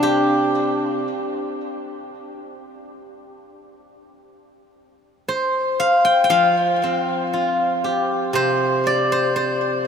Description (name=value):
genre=chinese traditional, Chinese solo plucked strings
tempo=53-62 BPM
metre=4/4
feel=rubato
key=unclear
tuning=A4 = 440 Hz
part: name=steel-string zither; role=solo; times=0.0-9.9 s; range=C3 to G5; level=-18 LUFS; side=equal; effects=ping-pong delay
room=wet huge ambient reverb, RT60 7.9 s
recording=dreamy mix soaked in reverb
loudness=-17 LUFS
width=side -7 dB against mid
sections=0.0-4.3 A section; 4.3-9.9 B section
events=none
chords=none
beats=| 0.03 1.06 2.11 3.21 | 4.28 5.29 6.33 7.35 | 8.37 9.36